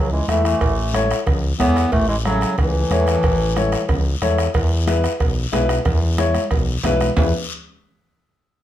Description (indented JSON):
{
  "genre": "latin, cumbia",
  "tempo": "183 BPM",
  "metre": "4/4",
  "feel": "straight",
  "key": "E major",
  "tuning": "A4 = 440 Hz",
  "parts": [
    { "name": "clear clarinet", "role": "melody", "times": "0.0-4.2 s", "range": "E3 to B3", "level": "-21 LUFS", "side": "left 1 dB", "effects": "none" },
    { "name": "bright trombone", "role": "second line", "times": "0.0-4.2 s", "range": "A2 to E3", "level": "-28 LUFS", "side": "right 4 dB", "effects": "none" },
    { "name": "growling FM bass", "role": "bass", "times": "0.0-7.3 s", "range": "A1 to E2", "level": "-21 LUFS", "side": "equal", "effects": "none" },
    { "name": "warm upright piano", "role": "accompaniment", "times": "0.3-7.3 s", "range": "E4 to E5", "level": "-22 LUFS", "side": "left 3 dB", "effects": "none" },
    { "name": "bombo", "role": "percussion", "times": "0.3-7.2 s", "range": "none", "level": "-23 LUFS", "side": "right 1 dB", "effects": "none" },
    { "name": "congas", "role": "percussion", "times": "0.3-7.2 s", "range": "none", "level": "-29 LUFS", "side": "equal", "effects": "none" },
    { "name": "guiro", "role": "percussion", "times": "0.3-7.2 s", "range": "none", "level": "-32 LUFS", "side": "left 6 dB", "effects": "none" },
    { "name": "cowbell and timbales", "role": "percussion", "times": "0.6-7.2 s", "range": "none", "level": "-28 LUFS", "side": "right 4 dB", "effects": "none" }
  ],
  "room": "light reverb",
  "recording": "none",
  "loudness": "-16 LUFS",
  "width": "side -12 dB against mid",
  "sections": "0.0-4.5 A section; 4.5-7.2 B section; 7.2-8.5 C section",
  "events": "none",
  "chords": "0.0 A; 4.5 E",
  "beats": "0.28 | 0.61 0.94 1.27 1.60 | 1.92 2.25 2.58 2.91 | 3.24 3.56 3.89 4.22 | 4.55 4.88 5.20 5.53 | 5.86 6.19 6.51 6.84 | 7.17"
}